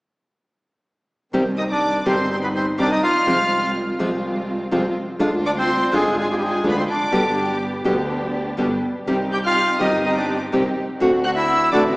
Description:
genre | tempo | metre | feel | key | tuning
tango | 124 BPM | 4/4 | rubato | C harmonic minor | A4 = 440 Hz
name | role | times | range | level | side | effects
nylon-string guitar | accompaniment | 1.3-11.8 s | B2 to G4 | -22 LUFS | equal | none
dark symphonic string section | stabs | 1.3-12.0 s | Eb3 to G4 | -25 LUFS | equal | none
clear double bass | bass | 1.3-12.0 s | F1 to D2 | -29 LUFS | equal | none
bandoneon | melody | 1.6-11.8 s | G3 to G5 | -20 LUFS | equal | none
dark symphonic violin section | second line | 1.6-11.8 s | G5 to G6 | -28 LUFS | equal | none
room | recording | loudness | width
wet scoring stage reverb, RT60 2.0 s | recorded in a church or concert hall, small speaker sound | -18 LUFS | side -26 dB against mid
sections
1.3-12.0 A section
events
none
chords
1.3 Cm; 3.3 Fm/C; 5.2 Ddim; 7.1 G; 9.1 Cm; 11.0 D7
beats
| 1.33 1.82 2.30 2.79 | 3.27 3.75 4.24 4.72 | 5.20 5.68 6.16 6.64 | 7.12 7.61 8.09 8.58 | 9.07 9.56 10.04 10.52 | 11.01 11.49

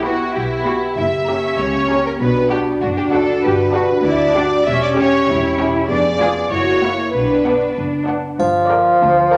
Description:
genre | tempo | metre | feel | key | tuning
cinematic, playful, whimsical film cue | 97 BPM | 2/4 | straight | B minor | A4 = 439 Hz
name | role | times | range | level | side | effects
warm studio violin section | melody | 0.0-9.4 s | F#5 to B5 | -34 LUFS | equal | none
clear studio violin section | second line | 0.0-9.4 s | D4 to E5 | -22 LUFS | equal | none
warm studio viola section | accompaniment | 0.0-9.4 s | A#3 to D5 | -27 LUFS | equal | none
mellow French horn section | sustained chords | 0.0-8.1 s | A#3 to Ab4 | -23 LUFS | equal | none
rich studio double bass section | bass | 0.0-9.4 s | E1 to D2 | -28 LUFS | equal | none
warm studio cello section | bass | 0.0-9.4 s | D2 to Ab4 | -24 LUFS | equal | none
warm bassoon | accompaniment | 8.4-9.4 s | F3 | -14 LUFS | equal | none
triangle | percussion | 8.4-9.4 s | none | -46 LUFS | equal | none
room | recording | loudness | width
moderate scoring stage reverb, RT60 1.7 s | none | -17 LUFS | mono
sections
0.0-8.4 A section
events
none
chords
0.0 Em/B; 1.0 F#7b9; 2.2 Bm; 3.4 Gmaj7; 4.7 C#dim/E; 5.9 Fdim7; 6.5 F#7; 7.1 Bm; 8.4 Gm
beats
0.34 | 0.97 1.59 | 2.21 2.82 | 3.43 4.05 | 4.66 5.28 | 5.89 6.51 | 7.14 7.77 | 8.39 9.01

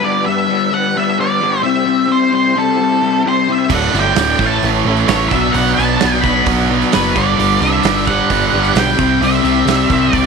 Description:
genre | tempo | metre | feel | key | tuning
classic rock | 130 BPM | 4/4 | straight | unclear | A4 = 440 Hz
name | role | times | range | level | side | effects
octave-fuzz lead guitar | melody | 0.0-10.3 s | A4 to B5 | -17 LUFS | right 2 dB | distortion, slapback echo
tonewheel organ | sustained chords | 0.0-10.3 s | F#3 to E5 | -25 LUFS | right 2 dB | slow rotary speaker, overdrive, chorus vibrato
raw garage guitar | riff | 0.0-10.3 s | D2 to C4 | -17 LUFS | left 11 dB | overdrive
distorted electric guitar | riff | 3.7-10.3 s | D2 to C4 | -17 LUFS | right 16 dB | overdrive
growling picked electric bass | bass | 3.7-10.3 s | D1 to C2 | -19 LUFS | right 2 dB | overdrive
big rock drum kit | drums | 3.7-10.2 s | crash cymbal, hi-hat, kick drum, snare drum | -21 LUFS | right 7 dB | none
tambourine | percussion | 3.7-10.2 s | none | -35 LUFS | left 14 dB | none
room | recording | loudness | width
little or no reverb | 1960s-style stereo with parts hard left and right | -12 LUFS | side -5 dB against mid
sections
0.0-10.3 A section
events
none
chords
0.0 G; 1.6 C; 3.7 D; 4.4 A; 5.3 Bm; 7.2 G; 9.0 C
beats
| 0.01 0.48 0.94 1.40 | 1.86 2.32 2.78 3.24 | 3.70 4.16 4.62 5.08 | 5.54 6.00 6.46 6.92 | 7.38 7.84 8.30 8.76 | 9.22 9.68 10.13

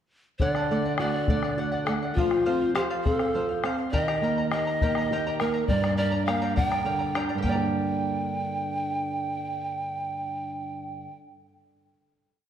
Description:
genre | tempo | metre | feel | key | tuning
andean folk, Andean ensemble | 68 BPM (dotted quarters) | 6/8 | straight | G minor | A4 = 440 Hz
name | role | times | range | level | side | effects
breathy mellow polished pan flute | melody | 0.4-11.1 s | F4 to G5 | -28 LUFS | equal | none
charango | accompaniment | 0.4-11.3 s | G4 to Bb5 | -33 LUFS | equal | none
flamenco guitar | accompaniment | 0.4-11.3 s | G2 to D5 | -29 LUFS | right 2 dB | none
bombo | percussion | 0.4-7.7 s | none | -30 LUFS | left 2 dB | none
room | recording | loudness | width
wet recital hall reverb, RT60 1.7 s | dark, warm production | -24 LUFS | side -9 dB against mid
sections
0.4-7.4 A section; 7.4-10.9 final chord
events
none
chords
0.4 D; 2.2 F; 3.9 Eb; 5.7 Gm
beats
| 0.41 1.29 | 2.17 3.05 | 3.93 4.81 | 5.69 6.57 | 7.44 8.32 | 9.19 10.06

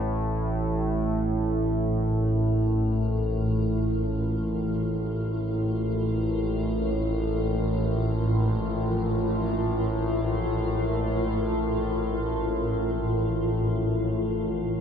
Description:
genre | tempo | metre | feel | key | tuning
dark ambient drone | free time | none | none | unclear | A4 = 439 Hz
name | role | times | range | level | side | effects
granular cloud pad | sustained chords | 1.1-14.8 s | A2 to Bb4 | -30 LUFS | left 1 dB | built-in reverb
analog drone | drone | 0.0-14.8 s | A1 to A2 | -25 LUFS | equal | chorus
bronze singing bowl | texture | 0.0-14.8 s | A5 | -50 LUFS | right 1 dB | none
room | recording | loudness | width
moderate huge ambient reverb, RT60 7.5 s | none | -24 LUFS | side -7 dB against mid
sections
0.0-14.8 A section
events
none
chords
0.0 Bb5/A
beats
free time

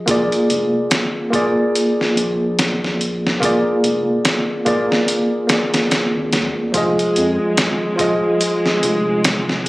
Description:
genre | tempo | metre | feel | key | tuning
trip hop | 72 BPM | 4/4 | swing 59% on 16ths | unclear | A4 = 442 Hz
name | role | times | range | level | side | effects
tine electric piano | accompaniment | 0.0-9.7 s | F3 to Eb5 | -17 LUFS | equal | harmonic tremolo, vintage 12-bit sampler grit, tape echo
round analog bass | bass | 0.1-9.7 s | F1 to F2 | -25 LUFS | equal | tube saturation
dusty soul sampler-style drum kit | drums | 0.1-9.7 s | hi-hat, kick drum, snare drum | -19 LUFS | equal | none
clear studio string section | sustained chords | 6.8-9.7 s | Ab3 | -23 LUFS | equal | vintage 12-bit sampler grit
room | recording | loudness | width
light reverb, digital ambience | recorded on a phone in the room, club reverb, compression | -15 LUFS | side -20 dB against mid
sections
0.0-9.7 A section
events
none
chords
0.1 Bb7; 6.8 Fm7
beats
| 0.08 0.92 1.75 2.58 | 3.42 4.25 5.08 5.92 | 6.75 7.58 8.42 9.25

